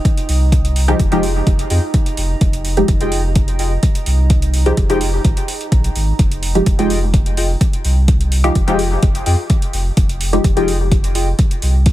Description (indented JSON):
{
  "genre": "dub techno",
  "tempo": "127 BPM",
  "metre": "4/4",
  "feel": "straight",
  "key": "F minor",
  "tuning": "A4 = 440 Hz",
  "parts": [
    { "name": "drifting glass-harmonics texture", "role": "texture", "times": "0.0-6.2 s", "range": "Eb4", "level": "-30 LUFS", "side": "right 8 dB", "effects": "chorus, built-in reverb, sidechain pumping" },
    { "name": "electronic hi-hat", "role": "drums", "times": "0.1-11.9 s", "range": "none", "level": "-27 LUFS", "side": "right 1 dB", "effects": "overdrive, small room ambience" },
    { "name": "electronic kick drum", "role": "drums", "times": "0.1-11.9 s", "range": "none", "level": "-15 LUFS", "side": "equal", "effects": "overdrive, small room ambience" },
    { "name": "warm sub bass", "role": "bass", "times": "0.3-11.9 s", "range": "F1 to F2", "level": "-17 LUFS", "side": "equal", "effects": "sidechain pumping" },
    { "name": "filtered dub chord stab", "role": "stabs", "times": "0.9-10.7 s", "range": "F3 to G4", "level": "-20 LUFS", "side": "equal", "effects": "chorus, phaser, sidechain pumping, dub echo" },
    { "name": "warbly lo-fi synth keys", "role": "riff", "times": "1.1-11.3 s", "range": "F4 to G5", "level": "-26 LUFS", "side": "left 2 dB", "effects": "chorus, sidechain pumping, dub echo" }
  ],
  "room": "little or no reverb",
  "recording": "none",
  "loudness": "-13 LUFS",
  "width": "side -15 dB against mid",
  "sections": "0.0-6.2 A section; 6.2-11.9 A section",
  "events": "none",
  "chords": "0.0 Fm9"
}